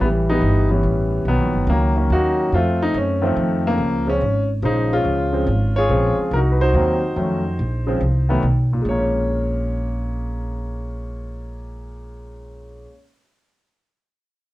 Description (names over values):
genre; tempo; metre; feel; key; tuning
jazz; 142 BPM; 3/4; swing 65% on 8ths; Bb minor; A4 = 441 Hz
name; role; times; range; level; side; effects
clear concert grand piano; melody; 0.0-13.0 s; Bb2 to Db5; -20 LUFS; left 1 dB; none
upright bass; bass; 0.0-12.8 s; F#1 to Gb2; -21 LUFS; equal; none
room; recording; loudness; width
light reverb; worn, warbling old tape, cassette tape, warbly pitch drift; -17 LUFS; side -17 dB against mid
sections
0.0-6.3 A section; 6.3-8.9 B section; 8.9-11.4 C section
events
none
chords
0.0 A9; 1.3 Bmaj7; 2.5 F7; 3.8 Bbm7; 6.3 Cm7b5; 7.2 F7b9b13; 7.6 Bbsus2; 8.4 N.C.; 8.9 Bbm7